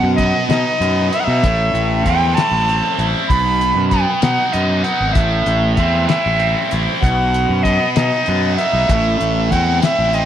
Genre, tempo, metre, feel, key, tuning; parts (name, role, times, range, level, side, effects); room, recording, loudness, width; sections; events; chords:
psychedelic rock; 64 BPM (dotted quarters); 6/8; straight; B phrygian dominant; A4 = 445 Hz
bright reedy silver concert flute; melody; 0.0-10.3 s; D#5 to B5; -18 LUFS; equal; slapback echo
overdriven electric guitar; riff; 0.0-10.3 s; A2 to E4; -19 LUFS; right 1 dB; phaser
fuzz fingered electric bass; bass; 0.0-10.3 s; G#1 to B2; -19 LUFS; equal; overdrive
damped 70s drum kit; drums; 0.2-10.3 s; hi-hat, kick drum, snare drum; -19 LUFS; left 2 dB
light reverb, small room ambience; 1960s-style stereo; -13 LUFS; side -10 dB against mid
0.0-10.3 A section
0.0 B; 1.4 Am; 3.3 B; 5.2 Am; 7.0 B; 8.9 Am